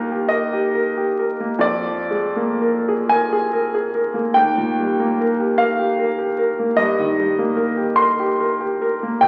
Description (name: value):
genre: classical, romantic nocturne for solo piano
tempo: 39-51 BPM (dotted quarters)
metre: 6/8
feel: rubato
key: Eb major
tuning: A4 = 440 Hz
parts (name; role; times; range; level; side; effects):
- clear concert grand piano; solo; 0.0-9.3 s; Bb1 to C6; -19 LUFS; equal; none
room: wet recital hall reverb, RT60 1.8 s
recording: very old 78 rpm record, vinyl crackle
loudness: -19 LUFS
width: mono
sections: 0.0-9.3 A section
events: none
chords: 0.0 Eb; 1.6 Bb7/F; 4.4 Eb; 6.8 Eb/G